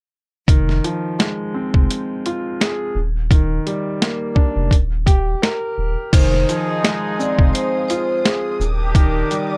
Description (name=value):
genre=hip hop, boom-bap hip-hop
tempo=85 BPM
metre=4/4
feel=swing 56% on 16ths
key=F dorian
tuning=A4 = 440 Hz
part: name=warm concert grand piano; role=accompaniment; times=0.5-9.6 s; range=Eb3 to Bb4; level=-25 LUFS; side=equal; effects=none
part: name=warm sub bass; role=bass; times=0.5-9.2 s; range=Eb1 to F1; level=-23 LUFS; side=equal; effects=none
part: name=boom bap sampler-style drum kit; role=drums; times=0.5-9.5 s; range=crash cymbal, hi-hat, kick drum, shaker, snare drum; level=-17 LUFS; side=equal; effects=none
part: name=vibraphone with soft mallets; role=melody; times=6.1-9.6 s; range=Bb4 to Eb5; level=-25 LUFS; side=equal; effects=none
part: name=dark studio string section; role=sustained chords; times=6.1-9.6 s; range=Ab4 to Eb6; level=-34 LUFS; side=equal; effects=none
part: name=clear trumpet section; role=stabs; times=6.1-9.6 s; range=D4 to Ab4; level=-29 LUFS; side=equal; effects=digital delay
room=little or no reverb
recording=worn, warbling old tape, cassette tape, warbly pitch drift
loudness=-19 LUFS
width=mono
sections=0.5-6.1 A section; 6.1-9.6 B section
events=none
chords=0.5 Fm7; 3.0 Ebmaj7; 4.7 Eb; 6.1 Fm7; 8.6 Ebmaj7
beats=| 0.48 1.19 1.89 2.60 | 3.31 4.01 4.72 5.42 | 6.13 6.83 7.54 8.25 | 8.95